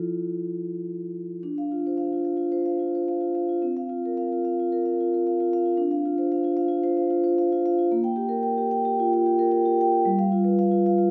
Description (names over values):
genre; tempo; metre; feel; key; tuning
classical, contemporary piece for solo vibraphone; 111 BPM; 4/4; rubato; D minor; A4 = 439 Hz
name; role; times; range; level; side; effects
vibraphone with soft mallets; solo; 0.0-11.1 s; F3 to G5; -24 LUFS; equal; none
room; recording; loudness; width
wet recital hall reverb, RT60 1.4 s; recorded in a church or concert hall; -24 LUFS; mono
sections
0.0-1.4 A section; 1.4-11.1 B section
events
none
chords
0.0 Fmaj7; 1.4 Dm7; 3.6 C7sus4; 5.8 Dm7; 7.9 Bb5; 10.1 G7